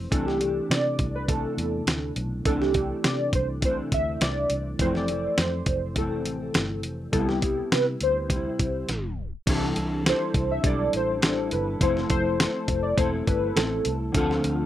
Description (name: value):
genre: indie pop, bedroom pop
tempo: 103 BPM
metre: 4/4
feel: straight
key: C major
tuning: A4 = 440 Hz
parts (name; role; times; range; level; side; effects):
- mellow electric guitar; accompaniment; 0.0-14.7 s; F2 to A4; -29 LUFS; left 2 dB; ensemble chorus, vibrato effect
- mellow tine electric piano; accompaniment; 0.0-14.7 s; E3 to A4; -37 LUFS; right 3 dB; none
- vintage muted fingered electric bass; bass; 0.0-14.7 s; E1 to C3; -31 LUFS; equal; none
- warbly lo-fi synth keys; melody; 0.1-14.0 s; G4 to E5; -28 LUFS; equal; analog chorus, tape echo
- dusty soul sampler-style drum kit; drums; 0.1-14.6 s; crash cymbal, hi-hat, kick drum, snare drum, toms; -26 LUFS; equal; none
room: light reverb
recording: rough home demo mix, tape stop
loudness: -23 LUFS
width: side -12 dB against mid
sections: 0.0-9.5 A section; 9.5-14.7 B section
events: drum fill 8.9-9.5; tape stop 8.9-9.5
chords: 0.1 C69; 4.8 Fmaj7; 7.1 Cmaj7; 9.5 C69; 11.8 Fmaj7; 14.2 Dm7